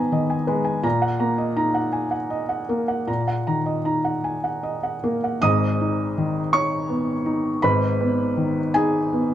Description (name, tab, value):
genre	neoclassical minimalist piano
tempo	53 BPM (dotted quarters)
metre	6/8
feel	uneven beats, rubato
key	G# minor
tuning	A4 = 440 Hz
part	felt-muted upright piano	solo	0.0-9.3 s	G#1 to D#6	-20 LUFS	equal	none
room	light reverb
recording	none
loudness	-20 LUFS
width	side -11 dB against mid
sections	0.0-5.4 A section; 5.4-9.3 B section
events	none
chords	0.0 G#m; 0.8 D#m/A#; 5.4 G#m